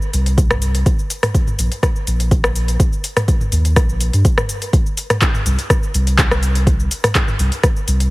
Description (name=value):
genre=afro house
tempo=124 BPM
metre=4/4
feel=straight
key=unclear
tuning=A4 = 440 Hz
part: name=afro-pop drum kit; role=drums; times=0.0-8.1 s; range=handclaps, hi-hat, rim click, shaker, toms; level=-19 LUFS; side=equal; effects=none
part: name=warm sub bass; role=bass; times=0.1-8.1 s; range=Bb1 to G2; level=-16 LUFS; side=equal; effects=sidechain pumping
part: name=electronic kick drum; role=drums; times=0.4-7.7 s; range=none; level=-16 LUFS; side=equal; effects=none
room=little or no reverb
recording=heavily compressed radio sound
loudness=-14 LUFS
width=side -21 dB against mid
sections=0.0-8.1 A section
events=none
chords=none